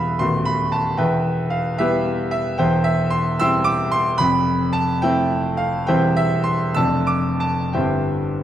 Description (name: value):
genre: classical, romantic character piece for solo piano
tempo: 59-77 BPM (dotted quarters)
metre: 6/8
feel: rubato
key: C major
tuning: A4 = 440 Hz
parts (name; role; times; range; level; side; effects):
- clear concert grand piano; solo; 0.0-8.4 s; D#1 to E6; -17 LUFS; equal; none
room: wet recital hall reverb, RT60 1.7 s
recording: dark, warm production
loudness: -17 LUFS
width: side -11 dB against mid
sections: 0.0-8.4 A section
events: none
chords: 0.2 B7/D#; 1.0 Em; 2.6 C/E; 4.2 Fmaj7; 5.9 C/E; 6.8 Dm/F; 7.7 C/G